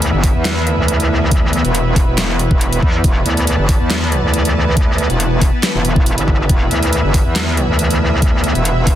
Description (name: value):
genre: heavy wobble dubstep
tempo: 139 BPM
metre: 4/4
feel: swing 54% on 16ths, half-time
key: E minor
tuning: A4 = 438 Hz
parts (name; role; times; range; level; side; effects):
- lush unison pad; sustained chords; 0.0-9.0 s; E3 to A5; -19 LUFS; equal; chorus, sidechain pumping
- metallic wobble bass; bass; 0.0-9.0 s; E1 to E2; -16 LUFS; equal; chorus, overdrive
- dubstep drum kit; drums; 0.0-9.0 s; handclaps, hi-hat, snare drum; -20 LUFS; equal; overdrive
- electronic kick drum; drums; 0.2-9.0 s; none; -14 LUFS; equal; overdrive
room: digital ambience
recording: dense, heavily limited modern master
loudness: -12 LUFS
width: side -12 dB against mid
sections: 0.0-9.0 A section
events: none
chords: 0.0 E5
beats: 0.02 0.45 0.88 | 1.31 1.75 2.18 2.61 | 3.04 3.47 3.90 4.34 | 4.77 5.20 5.63 6.06 | 6.49 6.93 7.36 7.79 | 8.22 8.65